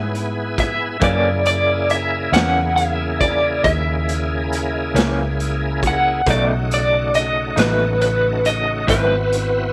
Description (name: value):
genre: slow blues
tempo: 46 BPM (dotted quarters)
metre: 12/8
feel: straight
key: unclear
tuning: A4 = 441 Hz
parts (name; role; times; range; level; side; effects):
- electric guitar at the edge of break-up; melody; 0.0-9.7 s; B4 to F#5; -21 LUFS; equal; tremolo
- bright tonewheel organ; sustained chords; 0.0-9.7 s; C#3 to G#4; -27 LUFS; equal; slow rotary speaker, chorus vibrato
- vintage muted fingered electric bass; bass; 0.0-9.7 s; G#1 to G#2; -25 LUFS; equal; none
- raw garage drum kit; drums; 0.1-9.5 s; hi-hat, kick drum, snare drum; -25 LUFS; equal; none
- electric guitar through a small old amp; accompaniment; 1.0-9.1 s; F#2 to E4; -26 LUFS; equal; tremolo
room: light reverb, small room reverb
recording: none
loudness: -18 LUFS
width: mono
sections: 0.0-9.7 A section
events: none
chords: 0.0 C#m7 (rootless); 1.0 F#7; 6.3 B7; 8.9 G#7alt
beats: | 1.02 2.33 3.64 4.96 | 6.27 7.58 8.89